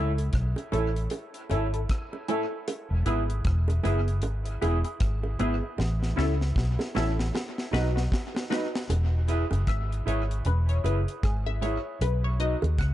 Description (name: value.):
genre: roots reggae.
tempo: 77 BPM.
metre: 4/4.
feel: swing 59% on 16ths.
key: E major.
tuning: A4 = 440 Hz.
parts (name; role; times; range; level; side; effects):
mellow electric guitar; accompaniment; 0.0-12.6 s; D#4 to E5; -34 LUFS; right 3 dB; dub echo.
filtered dub chord stab; stabs; 0.0-12.9 s; B3 to F#5; -34 LUFS; left 4 dB; phaser.
vintage muted fingered electric bass; bass; 0.0-12.9 s; E1 to D#2; -26 LUFS; equal; none.
deep reggae drum kit; drums; 0.2-12.9 s; hi-hat, kick drum, rim click, snare drum; -31 LUFS; equal; dub echo.
bongos; percussion; 0.6-12.8 s; none; -36 LUFS; right 4 dB; none.
room: light reverb.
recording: echo-heavy mix, nothing above 10.9 kHz.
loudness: -25 LUFS.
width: side -13 dB against mid.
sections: 0.0-8.9 A section; 8.9-12.9 B section.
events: drum fill 5.8-8.9; synth stab solo 8.9-12.9.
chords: 0.0 A; 2.7 E; 5.8 A; 7.3 B; 8.9 E; 12.0 B.